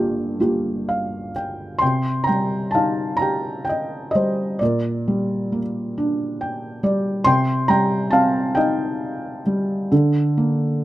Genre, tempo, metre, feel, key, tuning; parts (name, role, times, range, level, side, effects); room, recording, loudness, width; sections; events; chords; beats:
classical, lyrical solo piano; 44 BPM (dotted quarters); 6/8; uneven beats, rubato; A4 = 442 Hz
felt-muted upright piano; solo; 0.0-10.8 s; G1 to C6; -19 LUFS; equal
little or no reverb; close, detailed microphones; -19 LUFS; side -15 dB against mid
0.0-1.8 A section; 1.8-10.8 B section
felt piano fill 0.4-1.8, 6.0-7.3
0.0 Gm7; 1.8 Cm; 4.6 Gm/Bb; 7.3 Cm; 9.9 Gm/D
0.39 | 1.81 3.21 | 4.61 5.96 | 7.26 8.56 | 9.92